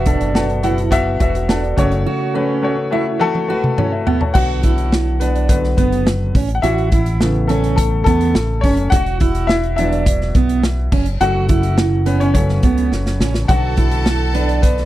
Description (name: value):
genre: piano-driven pop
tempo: 105 BPM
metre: 4/4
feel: straight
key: B minor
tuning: A4 = 444 Hz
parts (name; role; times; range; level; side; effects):
- clear concert grand piano; accompaniment; 0.0-14.9 s; B2 to A5; -19 LUFS; left 3 dB; none
- fingerpicked steel-string acoustic guitar; riff; 0.0-14.6 s; B3 to F#4; -22 LUFS; right 7 dB; none
- deep dub fingered electric bass; bass; 0.0-14.9 s; E1 to E2; -18 LUFS; equal; none
- natural country drum kit; drums; 0.1-14.9 s; crash cymbal, hi-hat, kick drum, snare drum, toms; -17 LUFS; equal; none
- warm studio violin section; second line; 13.5-14.9 s; A4 to A5; -25 LUFS; right 1 dB; none
room: little or no reverb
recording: dry, close 1970s-style studio recording, lossy compression artefacts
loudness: -14 LUFS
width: side -14 dB against mid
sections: 0.0-4.3 A section; 4.3-14.9 B section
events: drum fill 3.2-4.3, 12.9-13.5; grand piano solo 4.3-14.9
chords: 0.0 Esus2; 1.8 F#m; 4.3 Bm; 6.3 Aadd9; 8.9 Esus2; 10.9 F#m; 13.5 Bm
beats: 0.35 0.92 1.49 | 2.06 2.63 3.20 3.78 | 4.35 4.92 5.49 6.06 | 6.63 7.20 7.78 8.35 | 8.92 9.49 10.06 10.63 | 11.20 11.78 12.35 12.92 | 13.49 14.06 14.63